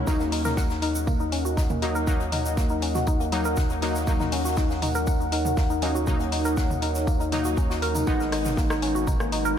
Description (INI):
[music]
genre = melodic techno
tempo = 120 BPM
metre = 4/4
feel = straight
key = Eb minor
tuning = A4 = 439 Hz
[part]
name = deep dark ambient pad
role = sustained chords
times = 0.0-9.6 s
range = Ab3 to Gb5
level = -30 LUFS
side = equal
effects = chorus, built-in reverb, sidechain pumping
[part]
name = synth brass stab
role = stabs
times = 0.0-9.6 s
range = Gb3 to Eb4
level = -31 LUFS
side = left 2 dB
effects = chorus, sidechain pumping, ping-pong delay
[part]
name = round analog bass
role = bass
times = 0.0-9.6 s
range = Ab1 to Eb2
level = -30 LUFS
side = equal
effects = sidechain pumping
[part]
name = woody wave-folded pluck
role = arpeggios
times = 0.1-9.5 s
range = Bb3 to Gb5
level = -29 LUFS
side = left 1 dB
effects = chorus, sidechain pumping, ping-pong delay
[part]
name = electronic kick drum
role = drums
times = 0.1-9.2 s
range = none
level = -25 LUFS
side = equal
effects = none
[part]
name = unplugged drum kit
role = drums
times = 0.1-9.4 s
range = hi-hat, snare drum, tambourine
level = -42 LUFS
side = left 1 dB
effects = sidechain pumping on hats, high-pass filter on hats, high-pass filter on snare, sidechain pumping on perc, high-pass filter on perc, high-pass filter on room
[part]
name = egg shaker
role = percussion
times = 0.1-9.5 s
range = none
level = -39 LUFS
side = right 1 dB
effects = none
[part]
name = house drum kit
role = drums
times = 0.3-9.4 s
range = hi-hat, rim click, toms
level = -34 LUFS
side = right 1 dB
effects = sidechain pumping on toms, sidechain pumping on hats
[sound]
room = moderate cathedral reverb, RT60 5.7 s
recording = dreamy mix soaked in reverb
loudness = -22 LUFS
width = side -9 dB against mid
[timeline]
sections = 0.0-9.6 A section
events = none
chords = 0.1 Ebm; 8.1 Abm